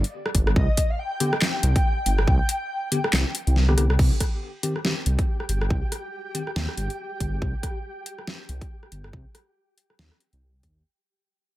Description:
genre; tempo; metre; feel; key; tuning
deep dubstep; 140 BPM; 4/4; swing 58% on 16ths, half-time; C minor; A4 = 440 Hz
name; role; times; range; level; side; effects
dark detuned saw bass; bass; 0.0-10.8 s; G1 to Eb2; -22 LUFS; equal; none
dubstep drum kit; drums; 0.0-10.7 s; crash cymbal, handclaps, hi-hat, rim click, snare drum; -26 LUFS; equal; overdrive
electronic kick drum; drums; 0.3-10.7 s; none; -23 LUFS; equal; overdrive
breathy flute-like synth lead; melody; 0.6-3.5 s; Eb5 to G5; -30 LUFS; left 1 dB; ensemble chorus, dub echo
bell-like tine electric piano; stabs; 1.2-6.4 s; D3 to G4; -29 LUFS; left 2 dB; medium stereo tremolo, dub echo
flickering grainy texture; texture; 4.7-10.9 s; G4 to G5; -38 LUFS; right 2 dB; built-in reverb
room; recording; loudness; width
little or no reverb; none; -21 LUFS; side -16 dB against mid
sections
0.0-4.0 A section; 4.0-10.8 B section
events
drop 0.0-4.0; kick drops out 3.6-4.0; fade-out 4.0-10.8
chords
0.0 N.C.; 4.0 C5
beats
0.13 | 0.56 0.99 1.42 1.85 | 2.27 2.70 3.13 3.56 | 3.99 4.42 4.85 5.28 | 5.70 6.13 6.56 6.99 | 7.42 7.85 8.28 8.70 | 9.13 9.56 9.99 10.42

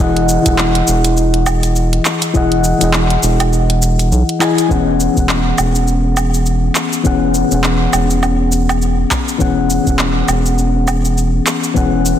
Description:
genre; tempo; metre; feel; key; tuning
sunset chillout; 102 BPM; 4/4; swing 58% on 16ths; E major; A4 = 440 Hz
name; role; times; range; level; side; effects
mellow FM electric piano; accompaniment; 0.0-12.2 s; E3 to G#5; -15 LUFS; moving between left 7 dB and equal; chorus, auto-pan, low-pass filter, ping-pong delay
round analog bass; bass; 0.0-12.1 s; E1 to B1; -16 LUFS; right 1 dB; none
smooth R&B drum kit; drums; 0.2-12.2 s; handclaps, hi-hat, shaker, woodblock; -19 LUFS; right 1 dB; small room reverb
electronic kick drum; drums; 0.5-11.9 s; none; -18 LUFS; right 1 dB; overdrive, small room reverb
room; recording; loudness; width
moderate lush hall reverb, RT60 1.7 s; dense, heavily limited modern master; -12 LUFS; side -10 dB against mid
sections
0.0-4.7 A section; 4.7-12.2 B section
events
kick drops out 3.5-4.7; filter sweep on FM electric piano 4.7-12.2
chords
0.0 Emaj7; 4.7 E6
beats
| 0.00 0.58 1.17 1.76 | 2.35 2.94 3.52 4.11 | 4.70 5.29 5.88 6.47 | 7.05 7.64 8.23 8.82 | 9.41 10.00 10.58 11.17 | 11.76

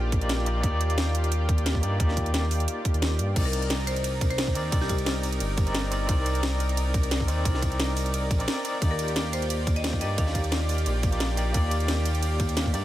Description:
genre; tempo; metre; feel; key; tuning
liquid drum and bass; 176 BPM; 4/4; swing 54% on 16ths; unclear; A4 = 439 Hz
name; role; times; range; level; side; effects
overdriven tine electric piano; accompaniment; 0.0-12.8 s; Bb3 to D5; -32 LUFS; left 1 dB; fast tremolo, digital delay
lush unison pad; sustained chords; 0.0-12.8 s; Eb4 to D5; -35 LUFS; equal; chorus, sidechain pumping
smooth gliding synth bass; bass; 0.0-12.8 s; G1 to G2; -27 LUFS; equal; none
drum and bass drum kit; drums; 0.1-12.8 s; crash cymbal, hi-hat, ride cymbal, snare drum; -31 LUFS; right 1 dB; overdrive
electronic kick drum; drums; 0.1-12.7 s; none; -26 LUFS; equal; overdrive
marimba with medium hard mallets; melody; 3.5-5.0, 8.9-10.7 s; G4 to F5; -36 LUFS; left 1 dB; dub echo
room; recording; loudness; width
digital ambience; none; -23 LUFS; side -14 dB against mid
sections
0.0-12.8 A section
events
none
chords
0.0 Ebmaj7; 3.4 Cm9; 8.8 Ebmaj7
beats
0.29 | 0.64 0.98 1.32 1.66 | 2.00 2.34 2.68 3.02 | 3.36 3.70 4.04 4.38 | 4.73 5.07 5.41 5.75 | 6.09 6.43 6.77 7.11 | 7.45 7.79 8.13 8.48 | 8.82 9.16 9.50 9.84 | 10.18 10.52 10.86 11.20 | 11.54 11.88 12.23 12.57

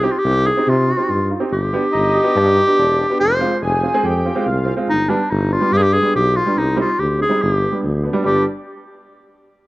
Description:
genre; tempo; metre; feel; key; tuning
klezmer; 142 BPM; 4/4; straight; G phrygian dominant; A4 = 441 Hz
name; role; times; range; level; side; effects
clear clarinet; melody; 0.0-8.4 s; D4 to C5; -17 LUFS; equal; none
warm upright piano; accompaniment; 0.0-8.4 s; G3 to Ab4; -22 LUFS; right 2 dB; none
warm tuba; bass; 0.0-8.4 s; E1 to C3; -19 LUFS; equal; none
mellow accordion; second line; 1.9-4.7, 8.3-8.4 s; D4 to Ab4; -22 LUFS; equal; none
room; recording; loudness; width
moderate spring reverb, RT60 2.6 s; cassette tape; -14 LUFS; side -19 dB against mid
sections
0.0-8.2 A section; 8.2-9.7 B section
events
none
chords
0.0 Cm; 1.5 G; 3.2 Fm; 4.9 G; 6.6 Cm; 7.4 G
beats
0.24 0.66 1.08 | 1.50 1.93 2.35 2.77 | 3.19 3.61 4.03 4.46 | 4.88 5.30 5.72 6.14 | 6.56 6.98 7.41 7.83 | 8.25

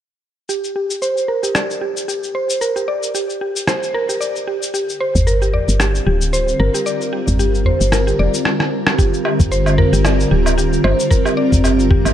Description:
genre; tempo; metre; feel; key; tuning
organic downtempo; 113 BPM; 4/4; swing 56% on 16ths; G minor pentatonic; A4 = 441 Hz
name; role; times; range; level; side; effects
mallet-like synth pluck; arpeggios; 0.5-12.0 s; G4 to D5; -20 LUFS; equal; chorus, analog delay
electronic cabasa, rim click and woodblock; drums; 0.5-12.1 s; none; -21 LUFS; equal; none
granular cloud pad; sustained chords; 5.5-12.1 s; D3 to Bb4; -19 LUFS; equal; built-in reverb, sidechain pumping
woody FM bass; bass; 5.2-12.1 s; D1 to G1; -17 LUFS; equal; tube saturation, sidechain pumping
udu; percussion; 5.2-12.0 s; none; -20 LUFS; equal; none
electronic kick drum; drums; 9.0-12.0 s; none; -15 LUFS; equal; none
room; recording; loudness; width
moderate plate reverb, RT60 2.2 s; dreamy mix soaked in reverb; -14 LUFS; side -10 dB against mid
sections
0.5-9.0 A section; 9.0-12.1 B section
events
filter sweep on synth pluck 0.5-9.0; drum fill 8.5-9.0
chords
0.5 Gm7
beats
| 0.49 1.02 1.55 2.08 | 2.61 3.15 3.68 4.21 | 4.74 5.27 5.80 6.33 | 6.86 7.39 7.92 8.46 | 8.99 9.52 10.05 10.58 | 11.11 11.64

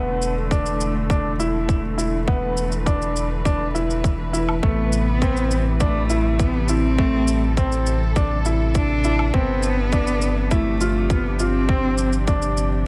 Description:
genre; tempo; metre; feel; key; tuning
piano and strings electronica; 102 BPM; 4/4; straight; A minor; A4 = 440 Hz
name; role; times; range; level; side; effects
muted studio string section; sustained chords; 0.0-12.9 s; C3 to B4; -31 LUFS; equal; sidechain pumping
clear upright piano; riff; 0.0-12.7 s; A3 to F4; -27 LUFS; equal; tape echo
warm sub bass; bass; 0.0-12.9 s; E1 to A1; -25 LUFS; equal; sidechain pumping
shaker and woodblock; drums; 0.2-12.7 s; none; -34 LUFS; equal; none
electronic kick drum; drums; 0.5-12.4 s; none; -25 LUFS; equal; overdrive
rich cello; melody; 4.6-12.6 s; A3 to D4; -27 LUFS; equal; tape echo
room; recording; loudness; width
light reverb, small room ambience; none; -21 LUFS; mono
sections
0.0-12.9 A section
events
none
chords
0.0 E7sus4; 4.6 Am7; 9.3 G7sus4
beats
0.52 1.10 1.69 | 2.28 2.87 3.46 4.04 | 4.63 5.22 5.81 6.40 | 6.99 7.58 8.16 8.75 | 9.34 9.93 10.52 11.10 | 11.69 12.28 12.87

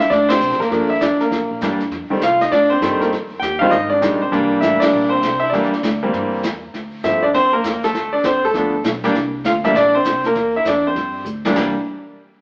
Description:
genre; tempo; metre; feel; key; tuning
jazz piano trio; 199 BPM; 4/4; swing 63% on 8ths; C mixolydian; A4 = 436 Hz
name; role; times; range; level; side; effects
bright grand piano; melody; 0.0-11.7 s; C2 to G5; -18 LUFS; equal; none
upright bass; bass; 0.0-11.7 s; G1 to C3; -32 LUFS; equal; none
jazz brush drum kit; drums; 0.0-11.8 s; brushed snare drum, crash cymbal, hi-hat, kick drum, ride cymbal, snare drum; -28 LUFS; equal; none
room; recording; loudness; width
wet stone room reverb, RT60 1.3 s; band playing live in one room, AM radio sound; -18 LUFS; mono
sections
0.0-11.6 A section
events
band accent 0.3, 4.8; drum fill 11.3-11.6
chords
0.0 C9; 0.7 Gm7; 1.3 C9; 1.9 F9; 3.1 Fm7; 4.3 C9; 6.7 Dm7; 7.9 Gadd9 (rootless); 9.1 C9; 11.6 N.C.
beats
0.10 0.40 | 0.70 1.01 1.31 1.61 | 1.91 2.21 2.52 2.82 | 3.12 3.42 3.72 4.03 | 4.33 4.63 4.93 5.23 | 5.53 5.83 6.13 6.44 | 6.74 7.04 7.34 7.64 | 7.94 8.24 8.54 8.85 | 9.15 9.45 9.75 10.05 | 10.35 10.65 10.96 11.26 | 11.56

